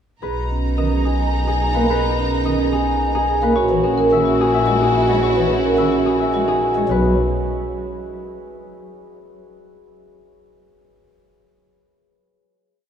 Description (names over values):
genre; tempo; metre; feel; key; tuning
classical, minimalist pattern music; 108 BPM; 3/4; straight; B major; A4 = 438 Hz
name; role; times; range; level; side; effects
concert harp; melody; 0.2-8.6 s; G#4 to E5; -22 LUFS; left 4 dB; none
warm symphonic violin section; sustained chords; 0.2-6.7 s; D#4 to A#5; -27 LUFS; right 1 dB; none
marimba with soft mallets; arpeggios; 0.2-7.2 s; C#4 to A#4; -20 LUFS; right 3 dB; none
rich symphonic double bass section; bass; 0.2-7.2 s; A#1 to B1; -23 LUFS; equal; none
pipe organ, stopped flute; accompaniment; 0.8-7.1 s; D#3 to A#3; -26 LUFS; left 2 dB; none
room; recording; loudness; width
wet cathedral reverb, RT60 5.2 s; in a vast, echoing space, small room reverb; -16 LUFS; side -8 dB against mid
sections
0.2-6.9 A section; 6.9-8.6 final chord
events
none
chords
0.2 Bmaj9; 3.6 F#9/A#; 6.9 Bsus2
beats
| 0.23 0.78 1.34 | 1.90 2.45 3.01 | 3.56 4.12 4.67 | 5.23 5.78 6.34 | 6.89 7.45 8.01